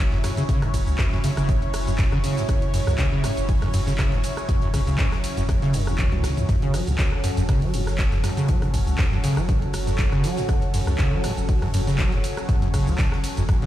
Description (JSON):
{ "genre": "acid house", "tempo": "120 BPM", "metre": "4/4", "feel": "swing 54% on 16ths", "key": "F# minor", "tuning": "A4 = 439 Hz", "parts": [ { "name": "lush unison pad", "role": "sustained chords", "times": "0.0-13.7 s", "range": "F#3 to C#5", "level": "-29 LUFS", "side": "equal", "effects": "chorus, phaser, sidechain pumping" }, { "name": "warm sub bass", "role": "bass", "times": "0.0-13.7 s", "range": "F#1 to C#2", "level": "-27 LUFS", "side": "equal", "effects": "sidechain pumping" }, { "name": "acid bass, saw", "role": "riff", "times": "0.1-13.7 s", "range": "E2 to F#3", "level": "-25 LUFS", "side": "equal", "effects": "overdrive, analog chorus, vintage 12-bit sampler grit, tape echo" }, { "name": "punchy analog drum machine", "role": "drums", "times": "0.1-13.7 s", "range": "handclaps, hi-hat, ride cymbal, rim click, shaker, toms", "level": "-31 LUFS", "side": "equal", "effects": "none" }, { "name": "swinging big-band drum kit", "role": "drums", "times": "0.1-13.7 s", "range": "hi-hat, snare drum", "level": "-44 LUFS", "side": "left 2 dB", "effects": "none" }, { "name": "electronic kick drum", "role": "drums", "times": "0.5-13.6 s", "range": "none", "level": "-23 LUFS", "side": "equal", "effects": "none" } ], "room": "little or no reverb", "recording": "played on a big sound system in a bare room, stone room reverb", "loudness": "-20 LUFS", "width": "side -13 dB against mid", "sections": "0.0-13.7 A section", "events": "drum fill 6.0-6.5", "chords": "0.0 F#m7" }